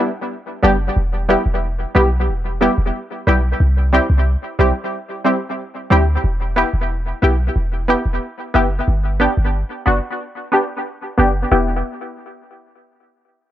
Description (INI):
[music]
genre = dancehall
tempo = 91 BPM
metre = 4/4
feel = straight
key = E minor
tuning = A4 = 440 Hz
[part]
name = punchy chord stab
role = accompaniment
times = 0.0-11.8 s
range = G3 to G4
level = -18 LUFS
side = equal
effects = chorus, low-pass filter, tape echo
[part]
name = clean 808-style bass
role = bass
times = 0.6-11.8 s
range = E1 to D2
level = -17 LUFS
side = equal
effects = none
[sound]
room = light reverb, digital ambience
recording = echo-heavy mix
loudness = -15 LUFS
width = side -12 dB against mid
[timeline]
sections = 0.0-6.2 A section; 6.2-11.5 B section; 11.5-13.5 C section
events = filter sweep on synth stab 6.2-11.5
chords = 0.0 G; 1.0 Em; 3.6 C; 6.2 Em; 8.9 G; 11.5 Em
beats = 0.31 | 0.97 1.62 2.29 2.94 | 3.60 4.26 4.92 5.58 | 6.24 6.90 7.56 8.22 | 8.88 9.54 10.20 10.86 | 11.52